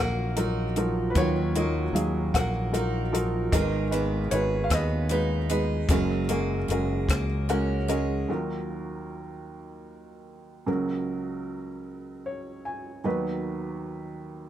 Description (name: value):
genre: acoustic folk-pop ballad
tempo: 51 BPM (dotted quarters)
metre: 6/8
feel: straight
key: unclear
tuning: A4 = 438 Hz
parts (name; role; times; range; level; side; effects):
- felt-muted upright piano; melody; 0.0-14.5 s; F#1 to G#5; -28 LUFS; right 1 dB; none
- picked steel-string acoustic guitar; arpeggios; 0.0-8.4 s; D#3 to G#4; -33 LUFS; right 4 dB; none
- fretless electric bass; bass; 0.0-8.2 s; F#1 to D#2; -28 LUFS; left 1 dB; none
- compact cocktail drum kit; drums; 0.4-8.1 s; hi-hat, kick drum, rim click; -27 LUFS; left 1 dB; none
room: light reverb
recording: none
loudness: -24 LUFS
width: side -11 dB against mid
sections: 0.0-8.3 A section; 8.3-14.5 B section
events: felt piano fill 7.1-8.3, 11.9-13.1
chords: 0.0 D#madd9; 3.5 G#m; 5.9 F#add9; 8.3 D#madd9; 10.7 F#/C#; 13.1 B/D#